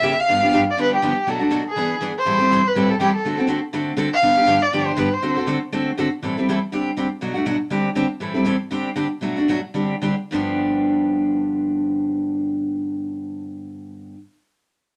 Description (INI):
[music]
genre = jazz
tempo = 206-243 BPM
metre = 4/4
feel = swing 56% on 8ths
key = G mixolydian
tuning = A4 = 440 Hz
[part]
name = warm violin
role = melody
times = 0.0-5.4 s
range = G4 to F5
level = -21 LUFS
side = equal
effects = none
[part]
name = picked steel-string acoustic guitar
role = accompaniment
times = 0.0-14.2 s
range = G2 to A4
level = -23 LUFS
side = equal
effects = none
[sound]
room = wet studio ambience, RT60 0.5 s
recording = none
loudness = -21 LUFS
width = mono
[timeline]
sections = 0.0-6.2 A section; 6.2-10.3 B section; 10.3-12.6 C section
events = slowing down 8.2-10.3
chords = 0.3 G7; 1.3 Bm7; 1.8 E7; 2.3 Am7; 3.2 D7; 4.2 G7; 5.2 D7; 6.2 Am7; 6.7 D7sus4; 7.2 Bm7; 7.7 D7sus4; 8.2 Am7; 8.7 D7sus4; 9.2 Bm7; 9.7 D7sus4; 10.3 G7